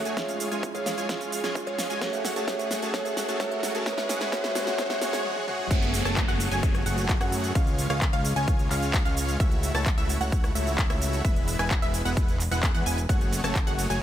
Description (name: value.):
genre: EDM, festival progressive house.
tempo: 130 BPM.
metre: 4/4.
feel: straight.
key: F# minor.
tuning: A4 = 441 Hz.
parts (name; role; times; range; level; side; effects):
kalimba; melody; 0.0-5.2 s; C#5 to E#5; -32 LUFS; equal; dub echo.
riser and downlifter; sound effects; 0.1-9.4 s; none; -36 LUFS; right 1 dB; none.
dense compressed supersaw; riff; 0.1-14.0 s; G#3 to A5; -31 LUFS; equal; sidechain pumping, dub echo.
big-room dance drum kit; drums; 0.1-14.0 s; cabasa, crash cymbal, handclaps, hi-hat, ride cymbal, rim click, snare drum, toms; -32 LUFS; equal; none.
felt-muted upright piano; accompaniment; 0.2-5.2 s; G#3 to G#4; -34 LUFS; right 3 dB; vintage 12-bit sampler grit, sidechain pumping.
electronic kick drum; drums; 0.2-13.6 s; none; -25 LUFS; equal; high-pass filter on kick.
wide unison pluck; arpeggios; 5.7-14.0 s; E5 to A5; -34 LUFS; equal; phaser, sidechain pumping, dub echo.
fat analog bass; bass; 5.7-14.0 s; E1 to F#2; -29 LUFS; equal; sidechain pumping.
room: light reverb.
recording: high-pass filter.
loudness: -24 LUFS.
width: side -11 dB against mid.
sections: 0.0-5.7 A section; 5.7-14.0 B section.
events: build-up 0.0-5.7; drum fill 0.0-5.2, 5.2-5.7; riser 0.1-5.2; break 5.2-5.7; drop 5.7-14.0.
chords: 0.2 C#; 2.0 A6; 3.9 C#madd11/G#; 5.7 F#madd9; 7.6 C#; 9.4 A6/C#; 11.2 E; 13.1 F#madd9.